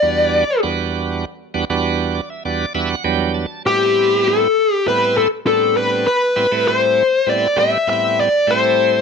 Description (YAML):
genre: blues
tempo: 100 BPM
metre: 4/4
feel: straight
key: unclear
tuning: A4 = 439 Hz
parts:
  - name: dark smooth lead guitar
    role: melody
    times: 0.0-9.0 s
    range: G4 to E5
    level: -14 LUFS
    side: left 3 dB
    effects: overdrive, slapback echo
  - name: bright tonewheel organ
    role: accompaniment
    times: 0.0-9.0 s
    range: E2 to A5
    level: -20 LUFS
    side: right 5 dB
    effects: slow rotary speaker, overdrive
room: light reverb, digital ambience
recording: dry, close 1970s-style studio recording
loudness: -15 LUFS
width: side -6 dB against mid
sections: 0.0-9.0 A section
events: tonewheel organ fill 1.8-3.6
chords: 0.0 Em9; 3.6 Am9